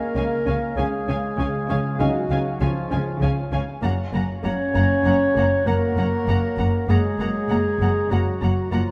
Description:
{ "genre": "cinematic, suspense film score", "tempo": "98 BPM", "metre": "5/4", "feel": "straight", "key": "unclear", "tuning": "A4 = 440 Hz", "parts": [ { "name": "dark clarinet", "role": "second line", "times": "0.0-8.9 s", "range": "F4 to Db5", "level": "-28 LUFS", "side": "equal", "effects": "none" }, { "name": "deep dark ambient pad", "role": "sustained chords", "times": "0.0-8.9 s", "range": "Db5 to Bb5", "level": "-36 LUFS", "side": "equal", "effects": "chorus, built-in reverb" }, { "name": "mellow French horn section", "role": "sustained chords", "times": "0.0-8.9 s", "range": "F3 to Db4", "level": "-30 LUFS", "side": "equal", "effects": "none" }, { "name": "muted studio cello section", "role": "riff", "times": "0.0-8.9 s", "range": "Gb2 to Db4", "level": "-31 LUFS", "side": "equal", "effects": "none" }, { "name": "felt-muted upright piano", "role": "texture", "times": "0.0-3.9 s", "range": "Eb4 to Eb5", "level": "-36 LUFS", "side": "equal", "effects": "none" }, { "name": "muted studio violin section", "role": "melody", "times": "0.2-8.8 s", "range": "Ab5 to Bb5", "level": "-39 LUFS", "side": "equal", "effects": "none" }, { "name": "muted studio violin section", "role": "second line", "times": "0.2-8.8 s", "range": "F5 to Gb5", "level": "-39 LUFS", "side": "equal", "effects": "none" }, { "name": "muted studio viola section", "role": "accompaniment", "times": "0.2-8.8 s", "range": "Bb3 to Db4", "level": "-33 LUFS", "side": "equal", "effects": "none" }, { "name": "muted studio cello section", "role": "bass", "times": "0.2-8.8 s", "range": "Gb2 to Db3", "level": "-30 LUFS", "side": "equal", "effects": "none" }, { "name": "muted studio double bass section", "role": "bass", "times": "0.2-8.8 s", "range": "Gb1 to Db2", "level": "-29 LUFS", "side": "equal", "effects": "none" } ], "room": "moderate scoring stage reverb, RT60 1.7 s", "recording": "dark, warm production", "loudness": "-22 LUFS", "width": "mono", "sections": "0.0-8.9 A section", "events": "none", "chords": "0.0 Db; 3.8 Gb", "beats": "0.16 | 0.77 1.38 2.00 2.61 3.22 | 3.83 4.44 5.06 5.67 6.28 | 6.89 7.50 8.12 8.73" }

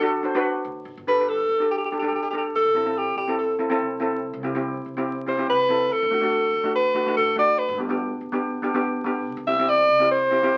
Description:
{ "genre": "calypso", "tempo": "143 BPM", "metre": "4/4", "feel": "swing 54% on 16ths", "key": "G major", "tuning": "A4 = 445 Hz", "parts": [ { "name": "breathy alto saxophone", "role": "melody", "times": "0.0-10.6 s", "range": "G4 to E5", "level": "-23 LUFS", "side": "equal", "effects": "none" }, { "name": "steel pan", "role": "accompaniment", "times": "0.0-10.6 s", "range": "A3 to C5", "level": "-28 LUFS", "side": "equal", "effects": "none" }, { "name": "upright bass", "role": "bass", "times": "0.0-10.6 s", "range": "G1 to D2", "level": "-46 LUFS", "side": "equal", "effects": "none" } ], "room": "wet studio reverb, RT60 0.6 s", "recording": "very old 78 rpm record, vinyl crackle", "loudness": "-23 LUFS", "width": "mono", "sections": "0.9-10.6 A section", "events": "alto saxophone solo 0.9-10.6", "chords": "0.0 D; 0.9 Gsus2; 2.5 Amadd9; 4.2 C; 5.9 D; 7.6 G; 9.3 C", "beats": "0.03 0.45 | 0.87 1.28 1.71 2.12 | 2.54 2.97 3.39 3.81 | 4.23 4.65 5.07 5.49 | 5.91 6.33 6.75 7.17 | 7.59 8.01 8.43 8.85 | 9.27 9.69 10.11 10.53" }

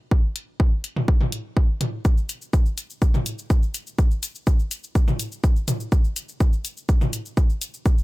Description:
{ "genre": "techno", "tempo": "124 BPM", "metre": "4/4", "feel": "straight", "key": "none", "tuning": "none", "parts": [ { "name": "electronic kick drum", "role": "drums", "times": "0.1-8.0 s", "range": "none", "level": "-18 LUFS", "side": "equal", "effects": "none" }, { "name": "house drum kit", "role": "drums", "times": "0.4-8.0 s", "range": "hi-hat, shaker, toms", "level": "-27 LUFS", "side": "equal", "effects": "sidechain pumping on hats, sidechain pumping on toms, sidechain pumping on perc" } ], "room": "little or no reverb", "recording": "none", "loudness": "-20 LUFS", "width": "side -20 dB against mid", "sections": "0.0-8.0 A section", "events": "none", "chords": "none", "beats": "| 0.11 0.60 1.08 1.57 | 2.05 2.53 3.02 3.50 | 3.98 4.47 4.95 5.44 | 5.92 6.41 6.89 7.37 | 7.86" }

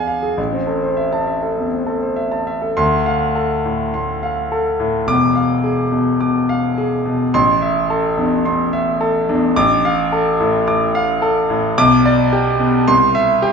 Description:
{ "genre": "classical, virtuoso piano study", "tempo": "99-110 BPM", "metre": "4/4", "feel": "rubato", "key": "A minor", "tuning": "A4 = 445 Hz", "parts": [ { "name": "warm concert grand piano", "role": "solo", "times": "0.0-13.5 s", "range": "E1 to D6", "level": "-14 LUFS", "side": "equal", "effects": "none" } ], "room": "wet recital hall reverb, RT60 1.5 s", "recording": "recorded in a church or concert hall, nothing above 7.8 kHz", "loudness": "-14 LUFS", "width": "side -5 dB against mid", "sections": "0.0-2.8 A section; 2.8-13.5 B section", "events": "none", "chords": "0.4 Am; 2.8 Dm7; 5.1 E7b9; 7.3 Am; 9.6 Dm/A; 11.8 G/B; 12.9 C", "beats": "| 0.38 0.98 1.58 2.18 | 2.78 3.36 3.94 4.52 | 5.08 5.64 6.21 6.78 | 7.34 7.90 8.45 9.01 | 9.56 10.12 10.67 11.22 | 11.78 12.32 12.88 13.43" }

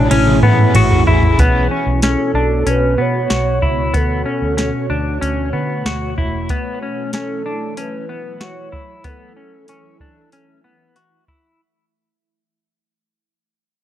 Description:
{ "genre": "dream pop", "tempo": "94 BPM", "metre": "4/4", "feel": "straight", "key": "unclear", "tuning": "A4 = 440 Hz", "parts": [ { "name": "hollow clarinet-like synth lead", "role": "melody", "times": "0.0-11.0 s", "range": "A4 to C#5", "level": "-23 LUFS", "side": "right 2 dB", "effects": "chorus, analog delay" }, { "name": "biting overdriven guitar", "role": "accompaniment", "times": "0.0-1.9 s", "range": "A3 to G#4", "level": "-26 LUFS", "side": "right 2 dB", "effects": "tremolo, analog chorus" }, { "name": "ethereal airy pad", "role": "sustained chords", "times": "0.0-11.6 s", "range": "B2 to C#5", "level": "-23 LUFS", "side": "right 2 dB", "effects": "ensemble chorus, built-in reverb" }, { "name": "semi-hollow electric guitar", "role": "arpeggios", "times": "0.0-11.6 s", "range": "B3 to F#4", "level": "-19 LUFS", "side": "left 3 dB", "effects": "analog chorus, analog delay" }, { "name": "vintage muted fingered electric bass", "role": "bass", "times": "0.0-6.5 s", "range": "E1 to D3", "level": "-19 LUFS", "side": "equal", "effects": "none" }, { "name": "synth chime", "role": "texture", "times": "0.0-1.7 s", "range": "C#5 to G#5", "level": "-34 LUFS", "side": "left 1 dB", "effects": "none" }, { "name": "soft vintage rhythm box", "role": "drums", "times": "0.1-11.4 s", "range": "hi-hat, kick drum, ride cymbal, snare drum, toms", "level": "-16 LUFS", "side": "right 1 dB", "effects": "none" } ], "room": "light reverb", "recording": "dry, gritty hardware recording", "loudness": "-14 LUFS", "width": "side -11 dB against mid", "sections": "0.0-1.4 A section; 1.4-11.6 B section", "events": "drum fill 0.0-1.4; fade-out 1.4-11.6", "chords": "0.0 Amaj7; 1.4 Bmadd9; 3.9 Dmaj7", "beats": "0.11 0.75 | 1.39 2.02 2.66 3.30 | 3.94 4.58 5.22 5.85 | 6.49 7.13 7.77 8.41 | 9.04 9.68 10.32 10.96" }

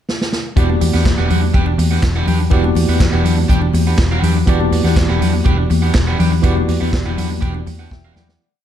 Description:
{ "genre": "disco", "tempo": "122 BPM", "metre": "4/4", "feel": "straight", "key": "E minor", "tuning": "A4 = 440 Hz", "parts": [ { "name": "vintage drum kit", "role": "drums", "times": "0.1-8.4 s", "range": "handclaps, hi-hat, kick drum, snare drum", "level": "-18 LUFS", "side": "equal", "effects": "none" }, { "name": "barky tine electric piano", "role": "accompaniment", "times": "0.6-8.6 s", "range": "E3 to G5", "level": "-20 LUFS", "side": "equal", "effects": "medium stereo tremolo" }, { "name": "electric guitar at the edge of break-up", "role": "accompaniment", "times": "0.6-8.3 s", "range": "D4 to G5", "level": "-23 LUFS", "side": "right 4 dB", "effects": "spring reverb" }, { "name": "vintage muted fingered electric bass", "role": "bass", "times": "0.6-8.4 s", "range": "E1 to E2", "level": "-16 LUFS", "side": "equal", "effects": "none" }, { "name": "congas", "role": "percussion", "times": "0.6-8.3 s", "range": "none", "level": "-24 LUFS", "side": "left 9 dB", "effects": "none" } ], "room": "little or no reverb", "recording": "none", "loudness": "-13 LUFS", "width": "side -10 dB against mid", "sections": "0.0-0.6 pickup bar; 0.6-8.4 groove", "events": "drum fill 0.1-0.6, 7.9-8.4; fade-out 6.4-8.4", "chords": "0.0 N.C.; 0.6 Em9", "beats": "0.08 | 0.57 1.05 1.54 2.03 | 2.52 3.00 3.49 3.98 | 4.47 4.96 5.45 5.94 | 6.43 6.93 7.42 7.91" }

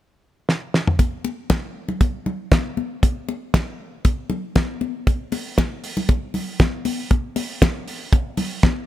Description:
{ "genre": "disco", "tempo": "118 BPM", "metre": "4/4", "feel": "straight", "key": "none", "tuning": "none", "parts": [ { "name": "damped 70s drum kit", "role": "drums", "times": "0.5-8.8 s", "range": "hi-hat, kick drum, snare drum, toms", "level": "-18 LUFS", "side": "equal", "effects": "none" }, { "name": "congas", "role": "percussion", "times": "1.0-8.8 s", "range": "none", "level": "-26 LUFS", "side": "left 5 dB", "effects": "none" } ], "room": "little or no reverb", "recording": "none", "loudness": "-20 LUFS", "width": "side -14 dB against mid", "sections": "1.0-8.9 A section", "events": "drum fill 0.5-1.0", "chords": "none", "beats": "0.48 | 0.99 1.50 2.01 2.52 | 3.03 3.54 4.05 4.56 | 5.07 5.58 6.09 6.60 | 7.11 7.62 8.13 8.63" }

